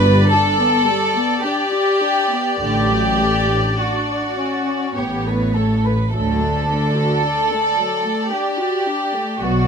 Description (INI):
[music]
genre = classical, slow romantic movement for string orchestra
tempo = 50-58 BPM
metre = 3/4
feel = rubato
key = D major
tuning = A4 = 440 Hz
[part]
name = rich studio violin section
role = melody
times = 0.0-9.7 s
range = C#5 to D5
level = -26 LUFS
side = left 2 dB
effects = none
[part]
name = warm symphonic violin section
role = second line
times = 0.0-9.7 s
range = F#4 to B4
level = -19 LUFS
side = equal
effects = none
[part]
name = dark symphonic viola section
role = accompaniment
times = 0.0-9.7 s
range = D3 to G4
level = -23 LUFS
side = left 1 dB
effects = none
[part]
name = warm symphonic cello section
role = bass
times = 0.0-9.7 s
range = G2 to D3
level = -23 LUFS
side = equal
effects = none
[part]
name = warm symphonic double bass section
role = bass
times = 0.0-9.7 s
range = G1 to D2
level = -21 LUFS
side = right 1 dB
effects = none
[sound]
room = light reverb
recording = close, detailed microphones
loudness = -16 LUFS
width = side -6 dB against mid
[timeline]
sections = 0.0-9.7 A section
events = none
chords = 0.0 G; 2.6 D/A; 5.0 A; 6.1 D